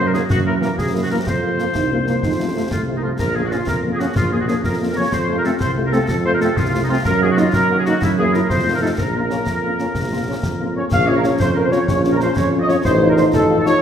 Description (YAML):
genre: military-style march for wind band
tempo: 124 BPM (dotted quarters)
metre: 6/8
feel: straight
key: Bb minor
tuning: A4 = 439 Hz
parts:
  - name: dark trumpet section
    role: melody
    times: 0.0-13.8 s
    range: Eb4 to F5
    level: -24 LUFS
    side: equal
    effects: none
  - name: mellow woodwind section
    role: second line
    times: 0.0-13.8 s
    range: Eb4 to F5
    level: -22 LUFS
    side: equal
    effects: none
  - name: dark French horn section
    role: accompaniment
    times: 0.0-13.7 s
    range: C3 to F4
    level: -25 LUFS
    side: left 4 dB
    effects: none
  - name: warm tuba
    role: bass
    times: 0.0-13.7 s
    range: A1 to Gb2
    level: -21 LUFS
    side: right 2 dB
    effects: none
  - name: bright trombone section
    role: sustained chords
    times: 0.1-13.8 s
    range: Eb3 to Fb4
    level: -24 LUFS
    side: right 1 dB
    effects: none
  - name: concert snare drum, concert bass drum and clash cymbals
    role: drums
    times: 0.1-13.8 s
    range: none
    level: -24 LUFS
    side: left 1 dB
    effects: none
  - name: dark euphonium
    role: second line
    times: 1.7-3.2 s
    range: A3 to Eb4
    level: -25 LUFS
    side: right 3 dB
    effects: none
room: wet recital hall reverb, RT60 1.4 s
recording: recorded in a church or concert hall, faint mains hum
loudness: -15 LUFS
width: side -8 dB against mid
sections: 0.0-10.9 A section; 10.9-13.8 B section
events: none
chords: 0.3 Gb7; 1.3 Fsus4; 2.2 F; 3.2 Bbm; 5.1 F; 7.1 Ebm/Gb; 8.0 Gb7; 8.5 F7; 9.0 Bbm; 12.9 F7/A